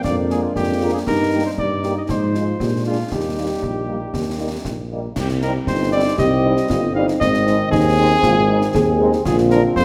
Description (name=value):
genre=military-style march for wind band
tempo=117 BPM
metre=2/4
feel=straight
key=Eb major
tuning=A4 = 440 Hz
part: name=mellow cornet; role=melody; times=0.0-9.8 s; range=F4 to F5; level=-25 LUFS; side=equal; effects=none
part: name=mellow euphonium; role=second line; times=0.0-9.8 s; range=C4 to Ab4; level=-25 LUFS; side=equal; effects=none
part: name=dark trombone section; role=sustained chords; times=0.0-9.8 s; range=D3 to Eb4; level=-28 LUFS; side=equal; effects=none
part: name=mellow tuba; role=bass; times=0.0-9.8 s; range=G1 to Bb2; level=-23 LUFS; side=equal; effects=none
part: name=concert snare drum, concert bass drum and clash cymbals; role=drums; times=0.0-9.8 s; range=none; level=-29 LUFS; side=equal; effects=none
part: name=mellow French horn section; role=accompaniment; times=0.3-9.6 s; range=F3 to Ab4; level=-29 LUFS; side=equal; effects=none
room=moderate scoring stage reverb, RT60 1.7 s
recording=none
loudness=-18 LUFS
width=mono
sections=0.0-5.2 A section; 5.2-9.8 B section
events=none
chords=0.0 Bb7/F; 1.1 Eb/G; 2.1 Fm7/Ab; 2.6 Bb7; 3.1 Eb; 5.2 Cm; 7.2 Ab; 9.3 Bbadd9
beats=| 0.04 0.56 | 1.07 1.58 | 2.09 2.60 | 3.12 3.63 | 4.14 4.65 | 5.16 5.67 | 6.19 6.70 | 7.21 7.72 | 8.23 8.74 | 9.25 9.76